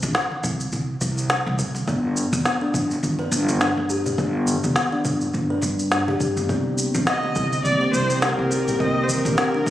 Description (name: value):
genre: organic downtempo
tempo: 104 BPM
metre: 4/4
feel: swing 57% on 16ths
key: C minor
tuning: A4 = 440 Hz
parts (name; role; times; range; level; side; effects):
- upright bass; bass; 0.0-9.7 s; F1 to G2; -26 LUFS; equal; sidechain pumping
- electronic shaker and snare drum; drums; 0.0-9.7 s; none; -25 LUFS; equal; small room ambience
- congas; percussion; 0.0-9.7 s; none; -31 LUFS; right 1 dB; none
- electronic kick drum; drums; 0.4-9.7 s; none; -30 LUFS; equal; small room ambience
- kalimba; arpeggios; 1.9-9.7 s; D3 to C5; -25 LUFS; left 1 dB; ping-pong delay
- warm analog pad; sustained chords; 6.5-9.7 s; C3 to G4; -26 LUFS; equal; chorus, sidechain pumping
- rich kamancheh; melody; 7.1-9.7 s; Bb4 to Eb5; -23 LUFS; equal; ping-pong delay
room: wet lush hall reverb, RT60 2.1 s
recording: recorded on a phone in the room, studio reverb, compression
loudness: -20 LUFS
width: side -13 dB against mid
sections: 0.0-9.7 A section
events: none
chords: 0.0 N.C.; 1.9 G; 6.5 Cm7